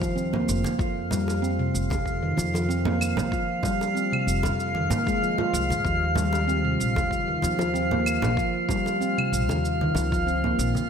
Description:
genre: organic downtempo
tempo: 95 BPM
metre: 4/4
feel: swing 54% on 16ths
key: unclear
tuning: A4 = 440 Hz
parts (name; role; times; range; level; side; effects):
- handpan; arpeggios; 0.0-10.9 s; C3 to F4; -26 LUFS; equal; ping-pong delay
- upright bass; bass; 0.0-10.7 s; F1 to Ab2; -28 LUFS; left 1 dB; none
- electronic kick drum; drums; 0.0-10.2 s; none; -31 LUFS; equal; small room ambience
- shaker and claves; drums; 0.0-10.9 s; none; -34 LUFS; right 3 dB; small room ambience
- drifting glass-harmonics texture; texture; 0.0-10.9 s; F4 to F5; -28 LUFS; right 1 dB; chorus, built-in reverb
- congas and bongos; percussion; 0.3-10.9 s; none; -34 LUFS; right 2 dB; none
room: wet lush hall reverb, RT60 1.6 s, small room ambience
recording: bright 1980s-style digital production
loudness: -22 LUFS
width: side -7 dB against mid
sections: 0.0-10.9 A section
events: none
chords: 0.0 F7(no3); 5.8 Eb5

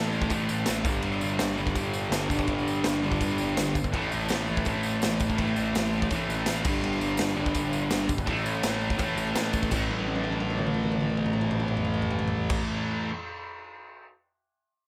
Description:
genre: garage rock duo or trio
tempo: 166 BPM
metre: 4/4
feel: straight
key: unclear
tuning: A4 = 440 Hz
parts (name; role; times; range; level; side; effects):
- fuzz guitar; riff; 0.0-13.1 s; G2 to A3; -30 LUFS; equal; distortion
- fuzz picked electric bass; bass; 0.0-12.5 s; G1 to A1; -35 LUFS; equal; overdrive
- tambourine; percussion; 0.1-12.5 s; none; -44 LUFS; equal; none
- raw garage drum kit; drums; 0.2-14.1 s; crash cymbal, kick drum, snare drum, toms; -33 LUFS; equal; none
room: light reverb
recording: none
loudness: -27 LUFS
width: mono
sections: 0.0-9.7 A section; 9.7-12.6 B section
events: drum fill 9.9-12.5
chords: 0.0 A5; 0.9 G5; 3.9 A5; 6.6 G5; 8.3 A5

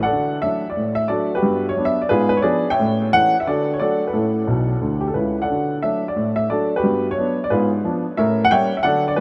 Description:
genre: jazz, stride piano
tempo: 178 BPM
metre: 4/4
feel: swing 60% on 8ths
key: D major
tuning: A4 = 439 Hz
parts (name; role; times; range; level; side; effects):
- warm upright piano; solo; 0.0-9.2 s; B1 to G5; -20 LUFS; equal; none
room: moderate huge ambient reverb, RT60 7.6 s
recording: none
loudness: -20 LUFS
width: mono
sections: 0.1-9.2 A section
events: upright piano fill 4.5-5.5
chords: 0.1 D; 1.4 Gmaj7; 2.1 G#dim7; 2.8 A7; 3.5 D; 4.1 A; 5.5 D; 6.8 Gmaj7; 7.5 G#dim7; 8.2 A7b9; 8.8 D

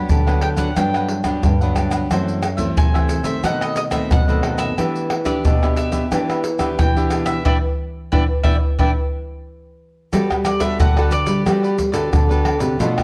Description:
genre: samba and choro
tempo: 90 BPM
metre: 4/4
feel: straight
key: E minor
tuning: A4 = 440 Hz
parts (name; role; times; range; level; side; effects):
- bowl-back mandolin; melody; 0.0-11.8 s; D5 to B5; -28 LUFS; equal; none
- cavaquinho; accompaniment; 0.0-13.0 s; D4 to F#5; -31 LUFS; equal; none
- nylon-string guitar; accompaniment; 0.0-13.0 s; F#2 to A4; -27 LUFS; equal; none
- nylon-string guitar; bass; 0.1-13.0 s; F#2 to G3; -25 LUFS; equal; none
- tube shaker, surdo, pandeiro and tamborim; percussion; 0.1-13.0 s; none; -21 LUFS; equal; none
room: light reverb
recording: worn, warbling old tape, cassette tape, warbly pitch drift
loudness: -19 LUFS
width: mono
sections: 0.0-10.1 A section; 10.1-13.0 B section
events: band accent 7.5-10.1; drum fill 9.5-10.1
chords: 0.0 Gmaj7; 2.1 F#m7b5; 3.4 B7b9; 4.8 Em7; 10.1 Gmaj9

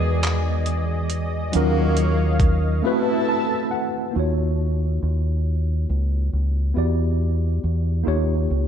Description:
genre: slow six-eight R&B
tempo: 46 BPM (dotted quarters)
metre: 6/8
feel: straight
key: unclear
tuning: A4 = 440 Hz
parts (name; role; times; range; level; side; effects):
- tine electric piano; accompaniment; 0.0-8.7 s; E3 to A5; -24 LUFS; equal; overdrive, fast stereo tremolo
- lush unison pad; sustained chords; 0.0-4.1 s; G#4 to A5; -30 LUFS; equal; chorus
- warm horn section; stabs; 0.0-3.7 s; C3 to G#4; -30 LUFS; left 1 dB; none
- deep dub fingered electric bass; bass; 0.0-8.7 s; Db2 to E2; -21 LUFS; equal; none
- dusty soul sampler-style drum kit; drums; 0.2-2.6 s; handclaps, hi-hat, kick drum; -23 LUFS; equal; overdrive
room: little or no reverb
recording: dark, warm production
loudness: -19 LUFS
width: side -8 dB against mid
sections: 0.0-4.1 A section; 4.1-8.7 B section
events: break 2.8-4.1; tine electric piano fill 2.8-4.1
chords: 0.0 Emaj9; 1.5 Ebm9; 2.8 Am69/C; 4.1 Ebm9; 6.7 Em7; 8.1 Eb9

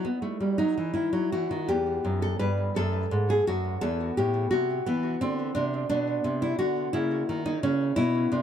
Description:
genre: classical, baroque-style dance for nylon-string guitar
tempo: 57 BPM (dotted quarters)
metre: 6/8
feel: rubato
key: E minor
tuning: A4 = 441 Hz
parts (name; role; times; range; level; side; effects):
- nylon-string guitar; solo; 0.0-8.4 s; E2 to B4; -24 LUFS; equal; tape echo
room: light reverb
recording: dry, close 1970s-style studio recording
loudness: -24 LUFS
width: side -9 dB against mid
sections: 0.0-1.7 A section; 1.7-8.4 B section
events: none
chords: 0.0 B (rootless); 1.7 Em; 2.8 F#madd9; 3.8 E5; 5.9 Bm; 6.9 A#dim/C#

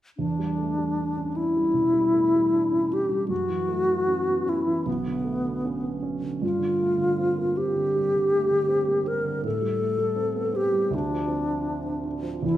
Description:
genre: classical, impressionist duo for alto flute and grand piano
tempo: 78 BPM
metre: 4/4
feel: uneven beats, rubato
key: unclear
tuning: A4 = 440 Hz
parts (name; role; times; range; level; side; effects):
- alto flute; melody; 0.2-12.6 s; B3 to Bb4; -23 LUFS; left 1 dB; none
- warm baby grand piano; accompaniment; 0.2-12.6 s; B1 to D4; -29 LUFS; right 4 dB; none
room: wet recital hall reverb, RT60 1.3 s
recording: minimal, uncompressed stereo recording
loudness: -22 LUFS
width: side -13 dB against mid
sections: 0.2-12.6 A section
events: none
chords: 0.2 Em7; 3.3 F#m7; 4.9 Bm9; 6.4 Gm11; 9.4 Am7; 10.9 Dm7

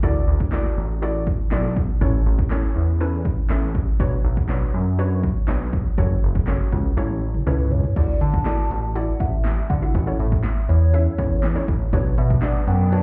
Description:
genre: dance-pop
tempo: 121 BPM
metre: 4/4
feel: straight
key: D major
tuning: A4 = 440 Hz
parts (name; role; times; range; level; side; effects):
- hollow square pluck; accompaniment; 0.0-13.0 s; C#4 to E5; -31 LUFS; equal; chorus, sidechain pumping
- chorused synth bass; bass; 0.0-13.0 s; F#1 to D3; -23 LUFS; equal; sidechain pumping
- punchy analog drum machine; drums; 0.0-13.0 s; crash cymbal, handclaps, hi-hat, kick drum, snare drum, toms; -24 LUFS; equal; none
- hollow clarinet-like synth lead; melody; 7.5-13.0 s; B4 to A5; -32 LUFS; equal; chorus, tape echo
- filtered supersaw swell; sustained chords; 11.9-13.0 s; B2 to D4; -32 LUFS; equal; sidechain pumping
room: digital ambience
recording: heard muffled through a wall, club reverb, EQ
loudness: -21 LUFS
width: mono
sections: 0.0-8.0 A section; 8.0-13.0 B section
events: drum fill 7.0-8.0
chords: 0.0 Dadd9; 2.0 A; 4.0 Bmadd9; 6.0 F#m; 7.0 A; 8.0 Dadd9; 9.9 A; 11.9 Bmadd9

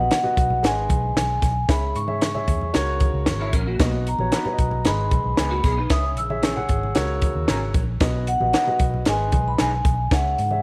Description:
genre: uptempo 1960s-style soul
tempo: 114 BPM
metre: 4/4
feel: straight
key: B major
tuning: A4 = 438 Hz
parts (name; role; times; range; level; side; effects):
- vibraphone with medium mallets; melody; 0.0-10.6 s; F#5 to E6; -27 LUFS; equal; none
- dark upright piano; accompaniment; 0.0-10.6 s; G#2 to A#5; -31 LUFS; equal; none
- vintage muted fingered electric bass; bass; 0.0-10.6 s; G#1 to G#2; -28 LUFS; equal; none
- compact cocktail drum kit; drums; 0.1-10.5 s; hi-hat, kick drum, snare drum; -25 LUFS; equal; none
- congas; percussion; 0.1-10.6 s; none; -37 LUFS; equal; none
- electric guitar through a small old amp; riff; 3.4-6.0 s; A#3 to C#5; -32 LUFS; equal; ensemble chorus
- electric guitar through a small old amp; stabs; 4.3-9.7 s; B3 to D#5; -35 LUFS; equal; none
room: light reverb, studio ambience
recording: none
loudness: -22 LUFS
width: mono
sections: 0.0-10.6 A section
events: upright piano fill 7.2-8.0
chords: 0.0 B; 0.6 G#m; 1.7 C#m; 2.7 F#/C#; 3.8 B; 4.9 G#m; 5.9 C#m; 7.0 F#/C#; 8.0 B; 9.1 G#m; 10.1 C#m

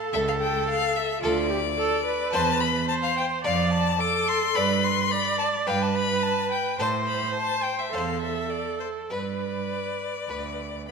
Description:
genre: quick classical-period movement for string quartet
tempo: 108 BPM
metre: 4/4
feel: rubato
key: unclear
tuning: A4 = 440 Hz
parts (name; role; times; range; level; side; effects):
- clear viola; accompaniment; 0.0-10.9 s; F4 to D5; -27 LUFS; right 3 dB; none
- rich violin; melody; 0.1-10.9 s; C5 to D6; -27 LUFS; left 7 dB; none
- rich violin; second line; 0.1-10.6 s; A4 to F5; -32 LUFS; left 2 dB; none
- rich cello; bass; 0.1-10.8 s; C#2 to A2; -30 LUFS; right 6 dB; none
room: moderate concert hall reverb, RT60 2.3 s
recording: minimal, uncompressed stereo recording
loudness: -23 LUFS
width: side -5 dB against mid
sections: 0.0-10.9 A section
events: none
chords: 0.1 A/C#; 1.2 D5; 2.3 C/E; 3.4 Dm/F; 4.6 G; 5.7 G7; 6.8 Am; 9.1 G

